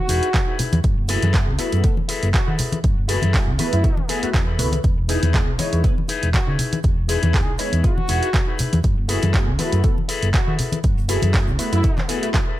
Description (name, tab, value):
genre	filtered disco house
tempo	120 BPM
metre	4/4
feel	swing 55% on 16ths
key	unclear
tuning	A4 = 442 Hz
part	warm horn section	melody	0.0-12.1 s	E4 to G#4	-28 LUFS	right 1 dB	sidechain pumping, digital delay
part	electric guitar with an envelope filter	riff	0.1-12.6 s	D#4 to B4	-28 LUFS	left 6 dB	vintage 12-bit sampler grit, sidechain pumping
part	hollow-body short-scale fingered electric bass	bass	0.1-11.8 s	E1 to D#3	-21 LUFS	equal	sidechain pumping
part	punchy analog drum machine	drums	0.1-12.5 s	handclaps, hi-hat	-27 LUFS	right 2 dB	sidechain pumping on hats
part	tube shaker and congas	percussion	0.1-12.5 s	none	-27 LUFS	left 2 dB	sidechain pumping on perc
part	electronic kick drum	drums	0.3-12.4 s	none	-20 LUFS	equal	none
part	funky polysynth comp	accompaniment	1.1-12.4 s	G#3 to C#5	-27 LUFS	equal	chorus, phaser, sidechain pumping
room	digital ambience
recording	none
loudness	-17 LUFS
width	side -15 dB against mid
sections	0.0-12.6 A section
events	drum fill 12.3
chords	0.0 Emaj7; 0.8 F#m11; 4.8 Emaj7; 8.8 F#m11